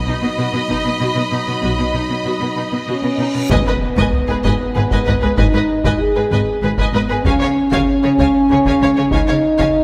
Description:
cinematic, epic orchestral film score; 96 BPM; 3/4; straight; G# dorian from 3.5 s; A4 = 439 Hz
warm symphonic violin section; melody; 0.0-9.7 s; B4 to B5; -30 LUFS; equal
clear symphonic violin section; second line; 0.0-9.6 s; G#4 to E#5; -27 LUFS; equal
dark French horn section; sustained chords; 0.0-9.8 s; F#3 to G#4; -20 LUFS; equal
rich symphonic viola section; accompaniment; 0.1-9.6 s; B3 to C#5; -28 LUFS; equal
clear symphonic cello section; bass; 0.1-9.7 s; G#2 to C#3; -24 LUFS; equal
taiko ensemble; drums; 0.7-9.8 s; -23 LUFS; equal
rich symphonic double bass section; bass; 1.6-9.2 s; G#1 to C#2; -25 LUFS; equal
reverse cymbal and impact; sound effects; 3.1-5.4 s; -31 LUFS; equal
moderate scoring stage reverb, RT60 1.8 s; -16 LUFS; mono
0.0-3.5 A section; 3.5-9.8 B section
reverse cymbal 3.1-3.5; impact 3.5-5.4
0.0 B; 3.5 G#m; 7.2 C#5
0.39 1.01 | 1.64 2.26 2.88 | 3.51 4.13 4.75 | 5.38 6.00 6.62 | 7.25 7.87 8.50 | 9.12 9.75

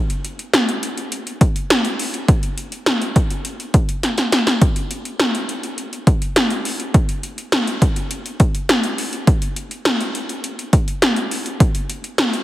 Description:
pop; 103 BPM; 4/4; straight
80s electronic pad drums; drums; 0.1-12.4 s; hi-hat, kick drum, snare drum; -16 LUFS; equal
moderate plate reverb, RT60 2.6 s; heavily compressed radio sound; -17 LUFS; side -15 dB against mid
0.0-12.4 A section
drum fill 4.0-4.6
0.54 1.12 1.70 | 2.28 2.87 3.45 4.03 | 4.61 5.20 5.78 6.36 | 6.94 7.53 8.11 8.69 | 9.28 9.86 10.44 11.02 | 11.61 12.19

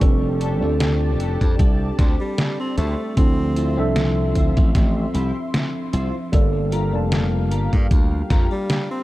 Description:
vaporwave; 76 BPM; 4/4; swing 54% on 16ths; F major; A4 = 440 Hz
warm tenor saxophone; melody; 0.0-9.0 s; G3 to C4; -30 LUFS; equal; tape echo
tine electric piano; accompaniment; 0.0-9.0 s; F3 to A5; -25 LUFS; equal; lush chorus, tape echo
lush unison pad; sustained chords; 0.0-9.0 s; F3 to C6; -34 LUFS; equal; chorus
glassy slap bass; bass; 0.0-8.5 s; F1 to G2; -22 LUFS; equal
detuned 8-bit digital drum machine; drums; 0.0-8.9 s; hi-hat, snare drum; -25 LUFS; equal; studio reverb
electronic kick drum; drums; 0.0-8.5 s; -17 LUFS; equal; studio reverb
clean electric guitar; riff; 0.4-8.5 s; D4 to C5; -34 LUFS; left 2 dB; analog chorus, tape echo
little or no reverb; dark, warm production; -17 LUFS; side -17 dB against mid
0.0-9.0 A section
0.0 F69; 3.2 Dm9; 6.3 Gm7
| 0.01 0.80 1.59 2.38 | 3.17 3.96 4.75 5.54 | 6.33 7.12 7.91 8.70

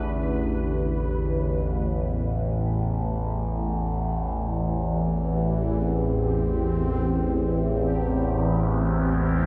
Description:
dark ambient drone; free time; A minor; A4 = 440 Hz
sweeping resonant pad; sustained chords; 0.0-9.5 s; A2 to A4; -30 LUFS; equal; chorus
overtone-sweeping drone; drone; 0.0-9.5 s; A1 to E2; -27 LUFS; equal; chorus, built-in reverb
bubbling stepped-filter texture; texture; 0.0-9.5 s; G4 to B4; -42 LUFS; equal; chorus, built-in reverb
wet huge ambient reverb, RT60 7.7 s; dark, warm production; -25 LUFS; mono
0.0-1.9 A section; 1.9-9.5 B section
fade-in on synth texture 1.9-9.5
0.0 D5; 1.9 Am
free time

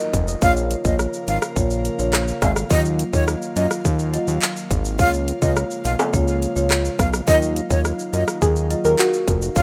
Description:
dancehall; 105 BPM; 4/4; straight; Eb minor; A4 = 440 Hz
soft round pluck; second line; 0.0-0.2, 8.4-9.4 s; Gb4 to Eb5; -24 LUFS; equal; chorus, delay
airy breathy pad; sustained chords; 0.0-9.6 s; Db3 to F5; -34 LUFS; equal; chorus, sidechain pumping
downlifter; sound effects; 0.0-2.7 s; -49 LUFS; equal
fat analog bass; bass; 0.1-9.6 s; F1 to Gb2; -24 LUFS; equal
island pop drum kit; drums; 0.1-9.6 s; handclaps, hi-hat, kick drum, rim click, shaker; -24 LUFS; equal
egg shaker and timbales; percussion; 0.1-9.6 s; -33 LUFS; equal
breathy jazz flute; melody; 0.4-9.6 s; Db5 to F5; -25 LUFS; equal; delay
marimba with medium mallets; accompaniment; 0.4-9.6 s; Gb3 to Eb5; -28 LUFS; equal
light reverb; rough home demo mix; -20 LUFS; mono
0.0-9.6 A section
0.4 Bbm; 2.7 Ebmadd9; 5.0 Db6; 7.3 Ebmadd9
| 0.42 0.99 1.56 2.13 | 2.71 3.28 3.85 4.42 | 4.99 5.56 6.13 6.71 | 7.28 7.85 8.42 8.99 | 9.56

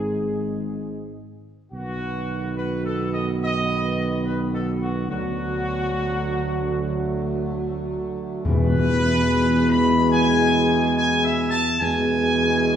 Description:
classical; 71 BPM; 4/4; straight; E major; A4 = 440 Hz
dark trumpet section; melody; 0.0-12.8 s; F#4 to B5; -25 LUFS; left 1 dB
mellow trombone section; sustained chords; 0.0-12.8 s; G#2 to B3; -30 LUFS; right 2 dB
warm French horn section; sustained chords; 0.0-12.8 s; G#3 to G#4; -28 LUFS; left 1 dB
dark tuba; bass; 0.0-12.8 s; G#1 to E2; -24 LUFS; right 1 dB
timpani; percussion; 8.4-9.7 s; E2; -24 LUFS; left 1 dB
wet scoring stage reverb, RT60 1.6 s; heard from further back in the room; -20 LUFS; side -9 dB against mid
0.0-12.8 A section
0.0 N.C.; 1.7 B; 5.1 D; 8.5 E
0.02 0.88 | 1.72 2.57 3.41 4.25 | 5.09 5.92 6.76 7.61 | 8.45 9.29 10.12 10.97 | 11.81 12.65

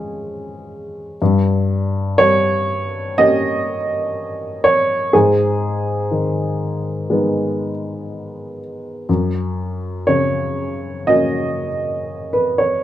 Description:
neoclassical minimalist piano; 61 BPM; 4/4; rubato; F# major; A4 = 437 Hz
dark upright piano; solo; 0.0-12.8 s; E#2 to D#5; -16 LUFS; equal
moderate large studio reverb, RT60 0.9 s; band playing live in one room; -16 LUFS; side -12 dB against mid
0.0-12.8 A section
0.0 C#/E#; 1.2 D#7/G; 5.1 G#m; 9.1 F#
0.22 | 1.21 2.19 3.17 4.16 | 5.13 6.10 7.08 8.08 | 9.08 10.08 11.08 12.09

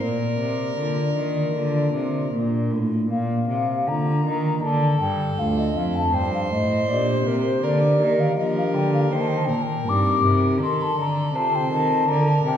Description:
classical, baroque-style sonata movement with continuo; 80 BPM; 4/4; rubato; Bb major; A4 = 440 Hz
baroque flute; melody; 0.0-12.6 s; Bb4 to D6; -24 LUFS; left 3 dB
rich violin; second line; 0.0-12.6 s; A4 to C5; -29 LUFS; right 2 dB
pipe organ, stopped flute; accompaniment; 0.0-12.6 s; D2 to A4; -25 LUFS; equal
rich cello; bass; 0.0-12.6 s; D2 to F3; -24 LUFS; right 1 dB
wet recital hall reverb, RT60 1.5 s; heard from further back in the room; -19 LUFS; side -9 dB against mid
0.0-3.1 A section; 3.1-12.6 A section
0.0 Bb; 4.6 Dm; 6.1 Gm; 9.1 Cm; 10.6 F7
| 0.01 0.78 1.55 2.33 | 3.11 3.88 4.63 5.38 | 6.14 6.89 7.63 8.37 | 9.11 9.87 10.61 11.35 | 12.08

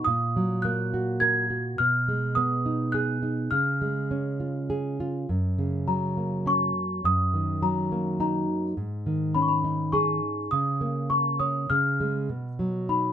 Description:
children's music, lullaby; 103 BPM; 3/4; rubato; F# major; A4 = 441 Hz
celesta; melody; 0.0-13.1 s; A#5 to G#6; -26 LUFS; left 1 dB
nylon-string guitar; accompaniment; 0.0-13.1 s; F#2 to C#5; -26 LUFS; right 1 dB
light reverb; -24 LUFS; side -9 dB against mid
0.0-5.3 A section; 5.3-13.1 B section
0.1 D#m/A#; 1.8 G#m/B; 3.5 C#; 5.3 F#; 7.0 D#m/F#; 8.8 G#sus4; 10.5 A#madd11/C#; 11.7 C#; 12.3 B
| 0.07 0.64 1.22 | 1.79 2.37 2.94 | 3.52 4.10 4.69 | 5.29 5.88 6.46 | 7.04 7.62 8.20 | 8.77 9.35 9.93 | 10.52 11.10 11.69 | 12.29 12.88

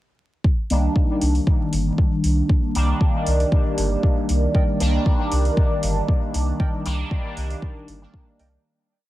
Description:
dub techno; 117 BPM; 4/4; straight; C minor; A4 = 440 Hz
electronic kick drum; drums; 0.4-8.2 s; -19 LUFS; equal
resonant sweep polysynth; stabs; 0.7-8.6 s; Eb3 to D4; -23 LUFS; equal; chorus, phaser, sidechain pumping, dub echo
soft dub sub bass; bass; 0.7-8.6 s; G1 to C2; -21 LUFS; equal; sidechain pumping
electronic hi-hat; drums; 0.7-8.5 s; -33 LUFS; equal
warbly lo-fi synth keys; riff; 4.5-8.5 s; Bb4 to G5; -40 LUFS; right 4 dB; chorus, sidechain pumping, dub echo
light reverb; vinyl crackle; -18 LUFS; side -16 dB against mid
0.4-8.7 groove
fade-out 5.9-8.7
0.4 Cm7
| 0.45 0.96 1.47 1.98 | 2.50 3.01 3.52 4.04 | 4.55 5.06 5.57 6.09 | 6.60 7.11 7.62 8.14

